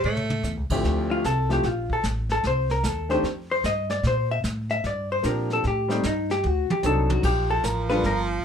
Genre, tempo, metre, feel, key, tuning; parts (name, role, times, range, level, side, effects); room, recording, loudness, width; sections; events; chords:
jazz, small-group swing and bop; 150 BPM; 4/4; swing 65% on 8ths; D minor; A4 = 440 Hz
vintage hollow-body jazz guitar; melody; 0.0-8.2 s; C4 to E5; -25 LUFS; left 2 dB
clear baritone saxophone; second line; 0.0-0.7, 7.3-8.4 s; F3 to A3; -29 LUFS; right 3 dB
upright bass; bass; 0.0-8.4 s; G1 to Bb2; -27 LUFS; equal
vintage brush drum kit; drums; 0.0-8.4 s; brushed snare drum, crash cymbal, hi-hat, kick drum, snare drum, toms; -32 LUFS; right 1 dB
warm concert grand piano; accompaniment; 0.7-8.0 s; D2 to A4; -27 LUFS; left 1 dB
moderate club reverb, RT60 0.5 s; minimal, uncompressed stereo recording; -22 LUFS; side -7 dB against mid
0.8-8.4 A section
drum fill 0.0-0.4, 6.4-7.2
0.0 A7; 0.8 Dm11; 2.4 Cmadd9; 3.2 Fsus2; 4.0 Bb69; 5.6 Am7b5; 6.4 D7b9; 7.2 Gm9